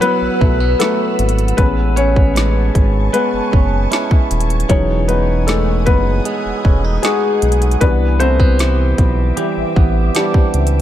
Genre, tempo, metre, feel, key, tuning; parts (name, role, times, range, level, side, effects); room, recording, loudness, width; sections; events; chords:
contemporary R&B; 77 BPM; 4/4; straight; E major; A4 = 440 Hz
felt-muted upright piano; accompaniment; 0.0-10.8 s; E3 to C#5; -18 LUFS; left 3 dB
ethereal airy pad; sustained chords; 0.0-10.8 s; B4 to E6; -25 LUFS; equal; ensemble chorus, built-in reverb, phaser, sidechain pumping
direct-recorded clean electric guitar; arpeggios; 0.0-10.8 s; E3 to F#4; -22 LUFS; right 8 dB; ping-pong delay
trap drum kit; drums; 0.0-10.8 s; hi-hat, kick drum, snare drum; -15 LUFS; equal
round analog bass; bass; 0.2-10.8 s; D#1 to C#2; -16 LUFS; equal
digital ambience; dark, warm production; -12 LUFS; side -12 dB against mid
0.0-10.8 A section
felt piano solo 0.0-10.8
0.0 D69 (rootless); 1.6 Amaj7; 4.7 Emaj9; 7.8 Cmaj9